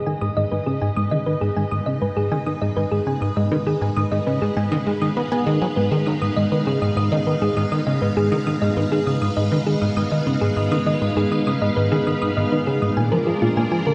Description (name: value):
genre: ambient, sequencer-driven space music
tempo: 100 BPM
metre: 4/4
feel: straight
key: G# dorian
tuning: A4 = 435 Hz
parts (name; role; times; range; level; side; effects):
- string machine, full ensemble; sustained chords; 0.0-13.9 s; G#3 to E#5; -28 LUFS; equal; ensemble chorus
- thumb-piano-like synth pluck; arpeggios; 0.1-13.9 s; E#4 to D#6; -27 LUFS; equal; chorus, tape echo
- plucky analog bass; riff; 0.1-13.9 s; G#2 to B3; -23 LUFS; equal; lush chorus, tape echo
room: wet cathedral reverb, RT60 5.6 s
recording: in a vast, echoing space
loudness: -21 LUFS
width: mono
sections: 0.0-13.9 A section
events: fade-in on string machine 0.0-13.9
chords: 0.0 G#m; 13.0 A#7